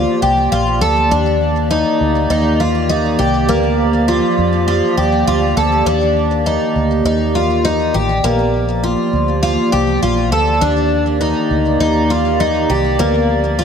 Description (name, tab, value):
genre	dream pop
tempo	101 BPM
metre	4/4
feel	straight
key	unclear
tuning	A4 = 440 Hz
part	warbly tape-like pad	sustained chords	0.0-13.6 s	Eb3 to D5	-17 LUFS	right 2 dB	chorus, built-in reverb
part	picked twelve-string acoustic guitar	arpeggios	0.0-13.6 s	Bb3 to A4	-16 LUFS	left 2 dB	analog chorus, digital delay
part	vintage muted fingered electric bass	bass	0.0-13.6 s	A1 to F2	-19 LUFS	right 1 dB	none
room	moderate plate reverb, RT60 2.6 s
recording	none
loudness	-13 LUFS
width	side -7 dB against mid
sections	0.0-13.6 A section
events	none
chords	0.0 Bb6; 1.1 Ebmaj7; 3.5 Gm7/D; 5.9 Ebmaj7; 8.2 Bb6; 10.6 Ebmaj7; 13.0 Gm7/D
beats	0.52 | 1.11 1.71 2.30 2.90 | 3.49 4.08 4.68 5.27 | 5.87 6.46 7.05 7.65 | 8.24 8.84 9.43 10.02 | 10.62 11.21 11.81 12.40 | 12.99 13.59